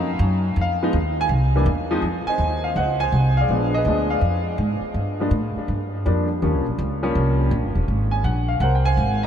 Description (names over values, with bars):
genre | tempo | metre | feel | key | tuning
jazz piano trio | 164 BPM | 4/4 | swing 65% on 8ths | unclear | A4 = 441 Hz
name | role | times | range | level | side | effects
clear grand piano | melody | 0.0-9.3 s | E3 to Bb5 | -22 LUFS | equal | wide subtle chorus, diffuse ambient delay
upright bass | bass | 0.0-9.3 s | Eb1 to A2 | -21 LUFS | equal | none
room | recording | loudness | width
moderate huge ambient reverb, RT60 7.8 s | dreamy mix soaked in reverb, cassette tape | -19 LUFS | side -9 dB against mid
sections
0.0-2.0 A section; 2.0-9.3 B section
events
grand piano solo 0.0-2.0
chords
0.0 N.C.; 0.6 Fm7; 1.3 C; 2.0 Fm7; 3.5 Bb7b9; 5.0 F69; 6.4 Eb9; 7.9 Ab69